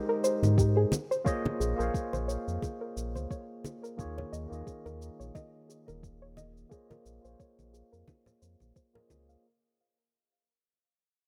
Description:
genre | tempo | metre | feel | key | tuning
sunset chillout | 88 BPM | 4/4 | swing 56% on 16ths | Bb dorian | A4 = 441 Hz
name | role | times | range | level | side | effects
overdriven tine electric piano | accompaniment | 0.0-9.5 s | Eb3 to F5 | -40 LUFS | equal | low-pass filter, delay
soft round pluck | arpeggios | 0.1-9.4 s | G4 to F5 | -36 LUFS | equal | chorus, delay
shaker | drums | 0.2-9.4 s | none | -46 LUFS | equal | overdrive
round analog bass | bass | 0.4-9.4 s | Eb1 to Ab2 | -32 LUFS | equal | none
congas | percussion | 0.4-9.3 s | none | -38 LUFS | equal | none
electronic kick drum | drums | 0.6-8.9 s | none | -34 LUFS | equal | overdrive
room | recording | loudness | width
light reverb | none | -31 LUFS | mono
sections
0.0-9.4 A section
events
fade-out 0.0-9.4; filter sweep on tine electric piano 0.0-9.4; filter sweep on synth pluck 0.0-9.4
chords
0.0 Abmaj9; 0.9 Bbm11; 4.0 Eb9sus4; 6.7 Bbm11

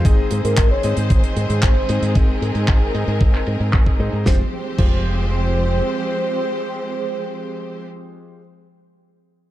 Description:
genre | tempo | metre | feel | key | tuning
italo disco | 114 BPM | 4/4 | straight | F minor | A4 = 440 Hz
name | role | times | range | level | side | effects
rich studio string section | sustained chords | 0.0-7.9 s | Eb3 to C5 | -26 LUFS | equal | none
fingered electric bass with an envelope filter | bass | 0.0-5.8 s | F1 to Ab2 | -20 LUFS | equal | none
soft octave-layered synth lead | melody | 0.1-8.4 s | Ab4 to Db5 | -25 LUFS | equal | chorus, phaser, cassette tape, ping-pong delay
bright electric grand piano | stabs | 0.1-8.4 s | Ab3 to Eb5 | -30 LUFS | left 2 dB | low-pass filter, digital delay
damped 70s drum kit | drums | 0.1-4.9 s | crash cymbal, handclaps, hi-hat, snare drum | -28 LUFS | right 1 dB | low-pass filter on hats, low-pass filter on toms, low-pass filter on cymbals, low-pass filter on snare, low-pass filter on perc, low-pass filter on room
electronic kick drum | drums | 0.1-4.9 s | none | -16 LUFS | equal | none
room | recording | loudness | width
small room ambience | dark, warm production | -16 LUFS | side -14 dB against mid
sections
0.1-4.3 A section; 4.3-8.5 B section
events
filter sweep on drum 0.1-4.3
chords
0.1 Ab; 4.3 Fmadd9

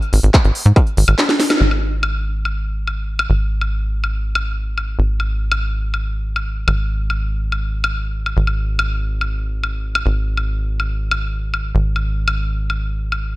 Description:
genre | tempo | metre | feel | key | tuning
psychedelic trance | 142 BPM | 4/4 | straight | unclear | A4 = 440 Hz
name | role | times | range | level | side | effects
drum and bass drum kit | drums | 0.0-13.2 s | handclaps, hi-hat, snare drum, woodblock | -21 LUFS | left 1 dB | none
tight sequencer bass | bass | 0.1-13.4 s | G#1 to G#2 | -18 LUFS | equal | none
electronic kick drum | drums | 0.3-0.8 s | none | -13 LUFS | equal | distortion, overdrive
room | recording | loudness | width
light reverb | dark, warm production | -16 LUFS | side -19 dB against mid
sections
0.0-1.6 A section; 1.6-13.4 B section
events
drop 0.0-1.6; drum fill 1.2-1.6; band accent 1.5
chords
none

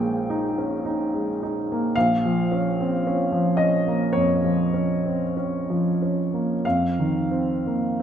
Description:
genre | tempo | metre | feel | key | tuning
classical, impressionist solo piano | 45-56 BPM | 4/4 | rubato | unclear | A4 = 440 Hz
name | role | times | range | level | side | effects
clear baby grand piano | solo | 0.0-8.0 s | Bb1 to G5 | -21 LUFS | equal | none
room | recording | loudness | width
moderate concert hall reverb, RT60 2.0 s | none | -21 LUFS | side -9 dB against mid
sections
0.0-8.0 A section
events
none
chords
0.0 Absus2/Bb; 2.0 Bbm; 6.6 F7(no3)

